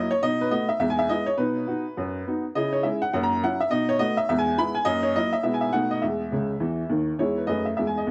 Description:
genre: jazz, stride piano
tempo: 207 BPM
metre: 4/4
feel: swing 62% on 8ths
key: E major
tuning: A4 = 441 Hz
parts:
  - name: clear upright piano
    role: solo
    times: 0.0-8.1 s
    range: C#2 to B5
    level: -25 LUFS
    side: equal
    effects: none
room: moderate small room reverb, RT60 0.5 s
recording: worn, warbling old tape, cassette tape, warbly pitch drift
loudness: -25 LUFS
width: mono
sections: 0.0-7.2 A section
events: upright piano fill 6.3-7.2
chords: 0.2 B7; 0.8 E; 1.4 B; 2.5 C#m; 3.1 F#7; 3.7 B7; 4.3 E; 4.9 F#7; 5.4 E/B; 5.7 B7; 6.0 E

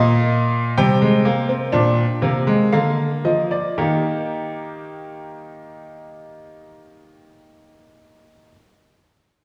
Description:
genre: classical, baroque-style 3-part fugue for grand piano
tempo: 55-66 BPM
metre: 4/4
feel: straight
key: Eb major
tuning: A4 = 442 Hz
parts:
  - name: clear baby grand piano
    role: solo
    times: 0.0-8.5 s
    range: Bb2 to G5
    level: -20 LUFS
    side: equal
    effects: none
room: wet scoring stage reverb, RT60 1.5 s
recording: small room ambience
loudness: -19 LUFS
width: mono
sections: 0.0-3.8 A section; 3.8-8.1 B section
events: slowing down 0.0-3.8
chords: 0.0 Eb/Bb; 1.7 Bb7; 3.8 Eb

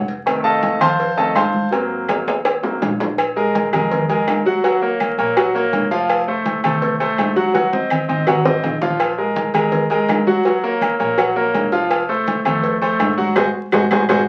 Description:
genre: latin, salsa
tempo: 165 BPM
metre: 4/4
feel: straight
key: Bb minor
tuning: A4 = 440 Hz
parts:
  - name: bright grand piano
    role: accompaniment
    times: 0.0-14.2 s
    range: Eb3 to C6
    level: -20 LUFS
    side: equal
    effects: none
  - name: upright bass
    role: bass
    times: 0.0-14.2 s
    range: F1 to Ab2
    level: -35 LUFS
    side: equal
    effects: none
  - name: congas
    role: percussion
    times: 0.1-14.2 s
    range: none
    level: -27 LUFS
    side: equal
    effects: none
  - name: cowbell and bongos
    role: percussion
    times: 0.1-14.2 s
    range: none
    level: -27 LUFS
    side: equal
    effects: none
  - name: agogo bells and timbales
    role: percussion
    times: 0.3-14.2 s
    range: none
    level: -25 LUFS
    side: equal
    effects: none
  - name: claves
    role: percussion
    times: 0.3-14.2 s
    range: none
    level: -34 LUFS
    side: equal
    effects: none
room: wet club reverb, RT60 0.5 s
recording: very old 78 rpm record, vinyl crackle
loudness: -18 LUFS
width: mono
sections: 0.0-3.2 A section; 3.2-14.3 B section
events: grand piano solo 0.0-3.2; drum fill 2.1-3.2, 7.5-9.0, 13.7-14.3; band accent 13.4-14.3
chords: 0.3 F7; 1.7 Ab7; 3.2 Bb5; 4.6 Ebm7; 6.1 F; 7.5 Ab7; 9.0 Bbm7; 10.5 Ebm7; 11.9 F; 13.4 Ab7

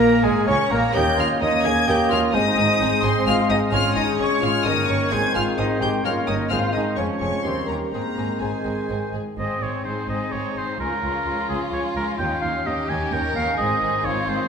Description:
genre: quick classical-period movement for symphony orchestra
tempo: 129 BPM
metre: 3/4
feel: straight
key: Ab major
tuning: A4 = 441 Hz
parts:
  - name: rich studio violin section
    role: melody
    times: 0.0-14.5 s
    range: G4 to Ab6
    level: -27 LUFS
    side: left 3 dB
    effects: none
  - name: bright oboe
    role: second line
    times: 0.0-14.5 s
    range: Ab4 to Ab5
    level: -28 LUFS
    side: right 1 dB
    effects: none
  - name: hollow concert flute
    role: second line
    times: 0.0-9.1 s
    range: Ab4 to Ab5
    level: -28 LUFS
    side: left 1 dB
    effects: none
  - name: mellow clarinet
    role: second line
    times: 0.0-9.1 s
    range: G4 to Db5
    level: -29 LUFS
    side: left 2 dB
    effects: none
  - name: rich chamber violin section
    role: second line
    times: 0.0-14.5 s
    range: Ab3 to Bb4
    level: -30 LUFS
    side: left 1 dB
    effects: none
  - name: mellow bassoon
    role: accompaniment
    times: 0.0-9.1 s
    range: Eb3 to Db4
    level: -28 LUFS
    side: right 1 dB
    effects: none
  - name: rich chamber viola section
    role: accompaniment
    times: 0.0-14.5 s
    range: Ab3 to Ab4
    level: -29 LUFS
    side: equal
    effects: none
  - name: dark French horn section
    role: sustained chords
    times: 0.0-14.5 s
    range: Eb3 to Db4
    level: -28 LUFS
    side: left 1 dB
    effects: none
  - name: rich chamber cello section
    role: bass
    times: 0.0-14.4 s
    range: Db2 to Db3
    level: -30 LUFS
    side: right 2 dB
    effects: none
  - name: rich chamber double bass section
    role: bass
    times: 0.0-14.4 s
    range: F1 to Eb2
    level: -30 LUFS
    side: right 3 dB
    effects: none
  - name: timpani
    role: percussion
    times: 3.7-6.9 s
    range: Ab2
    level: -36 LUFS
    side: left 1 dB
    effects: none
room: wet scoring stage reverb, RT60 1.6 s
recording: minimal, uncompressed stereo recording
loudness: -19 LUFS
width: side -6 dB against mid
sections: 0.0-9.4 A section; 9.4-14.5 A section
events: none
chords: 0.0 Db5; 0.9 Eb5; 2.3 Ab; 3.7 Db5/Ab; 4.7 Eb7/G; 5.1 Ab; 6.0 Eb7/G; 6.5 Ab; 7.0 Db/F; 7.4 Eb7; 7.9 Ab; 10.8 Db; 12.2 Eb7; 13.6 Ab

